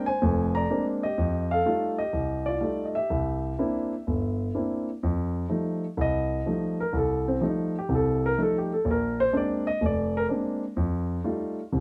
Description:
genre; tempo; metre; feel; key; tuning
solo jazz; 125 BPM; 4/4; swing 68% on 8ths; F mixolydian; A4 = 440 Hz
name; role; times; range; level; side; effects
warm grand piano; solo; 0.0-11.8 s; F1 to Bb5; -27 LUFS; equal; none
room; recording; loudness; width
moderate small room reverb, RT60 0.5 s; band playing live in one room; -27 LUFS; mono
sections
0.0-5.0 A section; 5.0-11.8 B section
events
grand piano solo 5.0-11.8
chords
0.0 Bb9; 1.2 F9; 3.1 C9; 5.0 F9; 8.9 Bb9; 10.8 F9

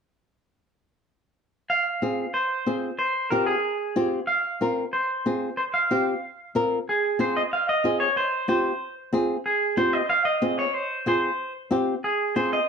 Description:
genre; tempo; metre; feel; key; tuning
latin; 186 BPM; 4/4; straight; F minor; A4 = 439 Hz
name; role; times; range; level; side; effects
clean electric guitar; melody; 1.7-12.7 s; Ab4 to F5; -24 LUFS; right 1 dB; spring reverb, slapback echo
flamenco guitar; accompaniment; 2.0-12.6 s; C4 to Bb4; -24 LUFS; left 1 dB; none
room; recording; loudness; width
moderate studio reverb, RT60 0.5 s; dark, warm production; -22 LUFS; side -6 dB against mid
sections
1.7-6.9 A section; 6.9-12.7 B section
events
none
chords
1.7 Fm

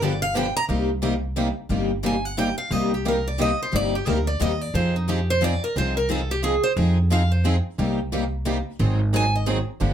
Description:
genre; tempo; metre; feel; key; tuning
acoustic string swing (jazz manouche); 178 BPM; 3/4; swing 59% on 8ths; C minor; A4 = 440 Hz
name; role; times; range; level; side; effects
picked steel-string acoustic guitar; melody; 0.0-9.5 s; Eb4 to Bb5; -25 LUFS; right 1 dB; none
picked steel-string acoustic guitar; accompaniment; 0.0-9.9 s; C3 to Ab4; -27 LUFS; left 5 dB; none
picked swing-style acoustic guitar; accompaniment; 0.0-9.9 s; C3 to Ab4; -29 LUFS; right 5 dB; none
upright bass; bass; 0.0-9.9 s; G1 to F2; -24 LUFS; right 1 dB; none
room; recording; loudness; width
moderate club reverb, RT60 0.5 s; none; -20 LUFS; side -9 dB against mid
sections
0.7-9.9 A section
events
steel-string acoustic guitar solo 0.0-9.9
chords
0.0 G7; 0.7 Cm7; 4.7 Fm7; 7.8 Cm7; 8.8 Ab7

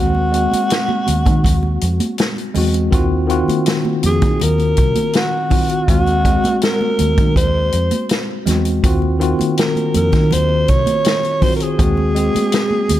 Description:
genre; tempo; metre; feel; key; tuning
lush 1970s-style soul; 81 BPM; 4/4; straight; unclear; A4 = 436 Hz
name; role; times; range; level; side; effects
growling alto saxophone; melody; 0.0-13.0 s; Gb4 to Db5; -19 LUFS; equal; tape echo
bright tine electric piano; accompaniment; 0.0-13.0 s; Eb3 to Ab4; -20 LUFS; left 1 dB; medium stereo tremolo
vintage muted fingered electric bass; bass; 0.0-13.0 s; C2 to Eb3; -18 LUFS; equal; none
congas; percussion; 0.1-13.0 s; none; -25 LUFS; right 4 dB; none
vintage drum kit; drums; 0.3-13.0 s; hi-hat, kick drum, snare drum; -18 LUFS; equal; none
room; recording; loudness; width
light reverb, small room ambience; none; -13 LUFS; side -13 dB against mid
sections
0.0-13.0 A section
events
none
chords
0.0 Ab7/Eb; 2.9 Ebm69; 5.9 Ab9/Eb; 8.8 Ebm69; 11.8 Ab7/Eb

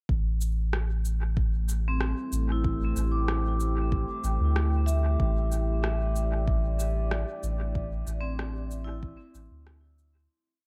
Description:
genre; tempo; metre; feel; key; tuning
ambient dub; 94 BPM; 4/4; straight; A minor; A4 = 439 Hz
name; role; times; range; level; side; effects
deep dark ambient pad; sustained chords; 1.6-10.3 s; A3 to G5; -39 LUFS; equal; chorus, built-in reverb
soft dub sub bass; bass; 0.1-10.3 s; A1 to D2; -30 LUFS; equal; none
electronic kick drum; drums; 0.1-9.2 s; none; -32 LUFS; equal; none
electronic cabasa and rim click; drums; 0.4-10.1 s; none; -39 LUFS; equal; dub echo
vibraphone with hard mallets; arpeggios; 1.9-10.7 s; C4 to D6; -37 LUFS; equal; low-pass filter, dub echo
room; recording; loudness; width
little or no reverb; echo-heavy mix; -28 LUFS; mono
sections
0.1-10.3 groove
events
fade-out 6.9-10.3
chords
0.1 Am7

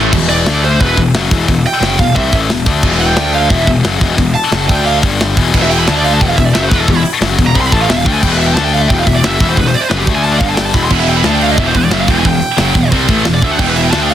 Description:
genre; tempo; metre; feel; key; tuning
heavy metal; 178 BPM; 4/4; straight; E minor; A4 = 439 Hz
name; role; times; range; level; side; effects
fuzz guitar; riff; 0.0-0.1, 10.9-14.1 s; E2 to D4; -20 LUFS; right 3 dB; distortion
heavy high-gain guitar; riff; 0.0-14.1 s; E2 to D4; -14 LUFS; left 6 dB; distortion
scooped high-gain guitar; riff; 0.0-0.1, 10.9-14.1 s; E2 to D4; -19 LUFS; right 14 dB; distortion
fuzz picked electric bass; bass; 0.0-14.1 s; E1 to D2; -17 LUFS; right 1 dB; overdrive
tight metal drum kit; drums; 0.1-14.1 s; crash cymbal, hi-hat, kick drum, snare drum; -15 LUFS; equal; soft clipping on kick, soft clipping on snare
high-gain lead guitar; melody; 0.3-14.1 s; E4 to C6; -16 LUFS; right 3 dB; distortion
room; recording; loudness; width
small room reverb; dense, heavily limited modern master; -9 LUFS; side -11 dB against mid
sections
0.1-14.1 A section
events
lead electric guitar solo 0.1-14.1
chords
0.1 E5; 0.5 D5; 0.8 Em; 3.2 D5; 3.5 E5; 4.7 D5; 5.0 G5; 5.4 E5; 5.9 D5; 6.2 E5; 8.6 D5; 8.9 E5; 10.1 D5; 10.4 G5; 10.7 E5; 11.2 D5; 11.6 Em

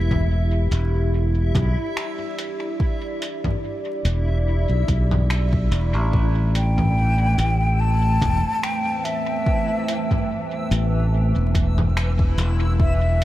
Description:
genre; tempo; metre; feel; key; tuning
ambient dub; 72 BPM; 4/4; swing 55% on 16ths; A minor; A4 = 440 Hz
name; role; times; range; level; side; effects
deep dark ambient pad; sustained chords; 0.0-13.2 s; E3 to D5; -29 LUFS; right 1 dB; chorus, built-in reverb
modern bright fingered electric bass; bass; 0.0-13.2 s; E1 to B1; -19 LUFS; equal; none
backwards swelling texture; texture; 0.0-13.2 s; E3 to E6; -33 LUFS; left 1 dB; built-in reverb
electronic kick drum; drums; 0.1-13.0 s; none; -23 LUFS; equal; none
lo-fi sampler-style drum kit; drums; 0.1-13.2 s; finger snaps, hi-hat, toms; -30 LUFS; equal; dub echo
breathy concert flute; melody; 6.6-13.2 s; E5 to A5; -26 LUFS; left 1 dB; dub echo
room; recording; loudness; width
little or no reverb; vinyl crackle; -19 LUFS; side -15 dB against mid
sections
0.0-13.2 A section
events
none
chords
0.0 Em7; 6.1 Am7

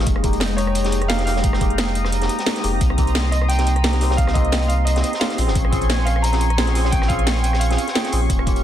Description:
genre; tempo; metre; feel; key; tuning
liquid drum and bass; 175 BPM; 4/4; swing 53% on 16ths; Bb dorian; A4 = 437 Hz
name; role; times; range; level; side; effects
tine electric piano; accompaniment; 0.0-8.6 s; Ab3 to Ab4; -25 LUFS; left 1 dB; overdrive, phaser, ping-pong delay
warm analog pad; sustained chords; 0.0-8.6 s; Ab3 to Eb6; -28 LUFS; left 1 dB; chorus
warm sub bass; bass; 0.0-8.6 s; Eb1 to C2; -20 LUFS; equal; tube saturation
crunchy breakbeat drum kit; drums; 0.1-8.6 s; hi-hat, snare drum; -30 LUFS; equal; high-pass filter on hats, high-pass filter on snare, high-pass filter on room
drum and bass drum kit; drums; 0.1-8.6 s; hi-hat, rim click, snare drum; -25 LUFS; equal; none
electronic kick drum; drums; 0.1-8.5 s; none; -20 LUFS; equal; none
clear grand piano; melody; 0.6-8.2 s; Db5 to Bb5; -27 LUFS; right 1 dB; vintage 12-bit sampler grit, dub echo
room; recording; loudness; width
light reverb, small room ambience; dense, heavily limited modern master; -16 LUFS; side -11 dB against mid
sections
0.0-8.6 A section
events
none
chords
0.1 Fm11; 2.8 Cm7; 5.4 Bbm9

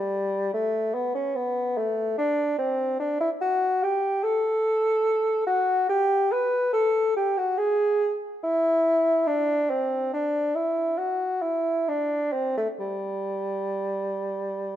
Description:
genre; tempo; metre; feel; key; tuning
classical, baroque-style fantasia for unaccompanied bassoon; 63-74 BPM; 4/4; rubato; G major; A4 = 440 Hz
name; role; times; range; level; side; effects
mellow bassoon; solo; 0.0-14.8 s; G3 to B4; -23 LUFS; equal; none
room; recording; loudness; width
moderate concert hall reverb, RT60 1.8 s; close, detailed microphones; -23 LUFS; side -11 dB against mid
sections
0.0-14.8 A section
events
none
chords
none

